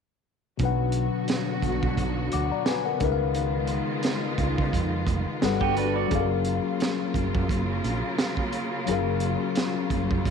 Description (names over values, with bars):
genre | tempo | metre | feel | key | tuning
R&B, neo-soul | 87 BPM | 4/4 | swing 54% on 16ths | F# major | A4 = 439 Hz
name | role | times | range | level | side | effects
tine electric piano | accompaniment | 0.6-10.3 s | B2 to D6 | -28 LUFS | left 10 dB | phaser
warm studio string section | sustained chords | 0.6-10.3 s | C#3 to F#4 | -31 LUFS | right 1 dB | none
woody fretless electric bass | bass | 0.6-10.3 s | E#1 to C#3 | -28 LUFS | right 3 dB | none
crunchy breakbeat drum kit | drums | 0.6-10.3 s | hi-hat, kick drum, snare drum | -28 LUFS | right 3 dB | none
electric guitar through a small old amp | second line | 5.6-6.3 s | B3 to D5 | -29 LUFS | right 16 dB | none
room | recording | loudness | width
light reverb, studio reverb | 1960s-style stereo with parts hard left and right | -23 LUFS | side -6 dB against mid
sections
0.6-10.3 A section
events
none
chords
0.6 Bm; 3.0 C#13; 5.4 Gmaj7; 6.1 F#maj7